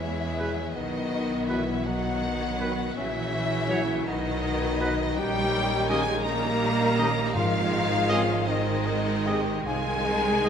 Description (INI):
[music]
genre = classical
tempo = 54 BPM (dotted quarters)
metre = 6/8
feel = rubato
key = Ab major from 5.2 s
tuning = A4 = 439 Hz
[part]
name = warm studio violin section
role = melody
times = 0.0-10.5 s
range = D#5 to Bb5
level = -32 LUFS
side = left 3 dB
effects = none
[part]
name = clear studio violin section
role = second line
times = 0.0-10.5 s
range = B3 to G#4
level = -37 LUFS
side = left 4 dB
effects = none
[part]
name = mellow clarinet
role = second line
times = 0.0-10.5 s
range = D#4 to Bb4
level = -32 LUFS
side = left 1 dB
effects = none
[part]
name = silver concert flute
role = second line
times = 0.0-10.5 s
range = Eb5 to Bb5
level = -35 LUFS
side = left 3 dB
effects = none
[part]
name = clear bassoon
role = accompaniment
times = 0.0-10.5 s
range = B3 to G4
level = -36 LUFS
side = right 1 dB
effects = none
[part]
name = clear studio viola section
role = accompaniment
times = 0.0-10.5 s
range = C#3 to B3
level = -32 LUFS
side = left 1 dB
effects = none
[part]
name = rich studio cello section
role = bass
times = 0.0-10.5 s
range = D#3 to Bb3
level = -32 LUFS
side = right 2 dB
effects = none
[part]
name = warm studio double bass section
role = bass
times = 0.0-10.5 s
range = Ab1 to E2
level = -32 LUFS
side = right 4 dB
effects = none
[part]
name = warm French horn section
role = sustained chords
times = 0.4-10.5 s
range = F#3 to G#4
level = -37 LUFS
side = left 4 dB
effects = none
[part]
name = warm trombone section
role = sustained chords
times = 0.4-10.5 s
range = B2 to Bb3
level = -40 LUFS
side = right 2 dB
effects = none
[part]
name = warm trumpet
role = stabs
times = 0.4-10.5 s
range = B4 to Eb5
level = -36 LUFS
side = right 1 dB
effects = none
[part]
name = timpani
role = percussion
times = 7.3-8.4 s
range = Ab2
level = -34 LUFS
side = left 1 dB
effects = none
[sound]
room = wet concert hall reverb, RT60 2.3 s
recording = none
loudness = -24 LUFS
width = side -7 dB against mid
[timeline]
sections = 0.0-10.5 A section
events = none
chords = 0.0 E; 0.8 B; 3.0 F#7/A#; 4.1 B; 5.2 Eb7/Bb; 7.4 Ab; 9.7 Ab/C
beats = | 0.77 1.87 | 2.97 4.08 | 5.18 6.27 | 7.36 8.47 | 9.66